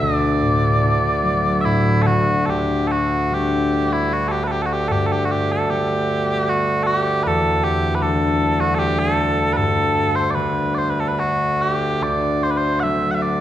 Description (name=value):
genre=celtic folk, Celtic slow air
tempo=71-79 BPM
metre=3/4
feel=rubato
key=D major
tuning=A4 = 440 Hz
part: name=mellow small bagpipes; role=melody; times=0.0-13.4 s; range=D2 to F#5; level=-18 LUFS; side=right 1 dB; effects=none
part: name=concert harp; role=accompaniment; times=0.0-13.4 s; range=D2 to D4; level=-23 LUFS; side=left 2 dB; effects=none
room=wet recital hall reverb, RT60 1.6 s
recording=recorded in a church or concert hall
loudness=-17 LUFS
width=side -12 dB against mid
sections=0.0-2.5 A section; 2.5-13.4 B section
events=none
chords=0.0 D; 2.5 D7sus4; 4.9 Gadd9; 7.3 Em7; 9.6 G; 12.0 D7